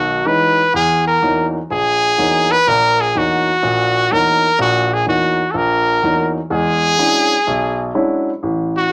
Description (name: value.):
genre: jazz.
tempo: 125 BPM.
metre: 4/4.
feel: swing 67% on 8ths.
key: unclear.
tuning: A4 = 439 Hz.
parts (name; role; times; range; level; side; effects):
brilliant trumpet; melody; 0.0-8.9 s; F#4 to B4; -17 LUFS; equal; none.
warm grand piano; accompaniment; 0.0-8.8 s; A1 to E4; -21 LUFS; equal; none.
room: moderate small room reverb, RT60 0.5 s.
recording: none.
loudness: -16 LUFS.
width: mono.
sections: 0.0-8.4 A section.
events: none.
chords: 0.0 Emaj9; 0.7 D#m; 6.5 E13.